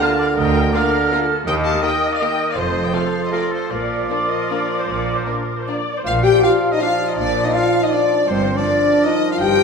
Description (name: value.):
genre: classical, orchestral ballroom waltz.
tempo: 146-176 BPM.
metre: 3/4.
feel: rubato.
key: Bb major.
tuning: A4 = 440 Hz.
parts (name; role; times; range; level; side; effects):
rich studio violin section; melody; 0.0-9.1 s; Bb4 to A5; -29 LUFS; left 4 dB; none.
bright concert flute; second line; 0.0-9.6 s; C5 to F6; -26 LUFS; right 2 dB; none.
clear oboe; second line; 0.0-9.6 s; F4 to G5; -28 LUFS; right 1 dB; none.
mellow clarinet; second line; 0.0-9.6 s; A4 to D5; -28 LUFS; left 1 dB; none.
rich studio violin section; second line; 0.0-9.6 s; A3 to G5; -27 LUFS; left 3 dB; none.
warm bassoon; accompaniment; 0.0-9.6 s; D3 to F3; -24 LUFS; right 2 dB; none.
warm studio viola section; accompaniment; 0.0-9.1 s; D4 to Eb5; -26 LUFS; equal; none.
mellow French horn section; sustained chords; 0.0-9.6 s; A3 to G4; -19 LUFS; left 2 dB; none.
clear chamber cello section; bass; 0.4-9.6 s; D2 to Bb2; -26 LUFS; right 3 dB; none.
rich studio double bass section; bass; 0.4-9.6 s; F1 to Eb2; -27 LUFS; right 1 dB; none.
room: wet scoring stage reverb, RT60 1.7 s.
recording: minimal, uncompressed stereo recording.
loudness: -16 LUFS.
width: side -5 dB against mid.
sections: 0.0-6.1 A section; 6.1-9.6 A section.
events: none.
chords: 0.0 Bb/D; 1.5 Eb; 2.6 F; 3.7 Bb; 8.3 Gm7.